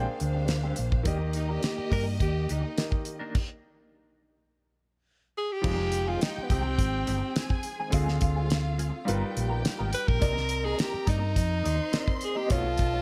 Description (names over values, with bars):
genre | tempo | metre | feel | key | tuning
lush 1970s-style soul | 105 BPM | 4/4 | straight | F dorian | A4 = 440 Hz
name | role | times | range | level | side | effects
warm studio string section | second line | 0.0-13.0 s | Bb3 to C6 | -40 LUFS | equal | none
clear concert grand piano | accompaniment | 0.0-13.0 s | D3 to G5 | -40 LUFS | equal | none
mellow electric guitar | riff | 0.0-13.0 s | Eb3 to Eb5 | -40 LUFS | equal | wah, tremolo
hollow-body short-scale fingered electric bass | bass | 0.0-13.0 s | F1 to G2 | -32 LUFS | equal | none
damped 70s drum kit | drums | 0.2-12.9 s | crash cymbal, hi-hat, kick drum, snare drum | -31 LUFS | equal | none
breathy tenor saxophone | melody | 1.4-13.0 s | B3 to B4 | -34 LUFS | equal | none
room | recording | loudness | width
studio reverb | none | -28 LUFS | mono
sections
0.0-5.6 A section; 5.6-13.0 B section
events
stop 3.4-5.6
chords
0.0 Bb13; 1.1 Ebmaj7; 3.4 N.C.; 5.6 Fm9; 7.9 Dm7b5; 9.1 G7alt; 10.2 Cm9; 12.5 B9